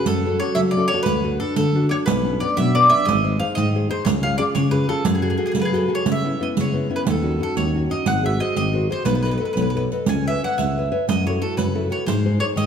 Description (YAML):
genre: italian folk, Italian serenade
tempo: 120 BPM (dotted quarters)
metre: 6/8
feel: straight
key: F# minor, C# minor from 6.1 s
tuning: A4 = 441 Hz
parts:
  - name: mandolin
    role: melody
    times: 0.0-12.6 s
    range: G#4 to G#5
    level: -23 LUFS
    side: equal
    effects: none
  - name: nylon-string guitar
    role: accompaniment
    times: 0.0-12.7 s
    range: B2 to E5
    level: -24 LUFS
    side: left 2 dB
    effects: none
  - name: dark tuba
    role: bass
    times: 0.1-12.7 s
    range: G#1 to F#3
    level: -23 LUFS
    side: equal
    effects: none
  - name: riq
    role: percussion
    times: 0.1-12.7 s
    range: none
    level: -26 LUFS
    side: right 6 dB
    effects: none
room: wet recital hall reverb, RT60 1.6 s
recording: none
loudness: -18 LUFS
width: side -7 dB against mid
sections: 0.0-6.1 A section; 6.1-12.7 B section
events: none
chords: 0.1 F#m; 1.1 D; 2.1 Bmadd9; 3.1 G#; 4.1 C#; 5.1 F#madd9; 6.1 C#m7; 7.1 D#m7b5; 8.1 G#7; 9.1 B7; 10.1 C#m7; 11.1 F#m7; 12.1 G#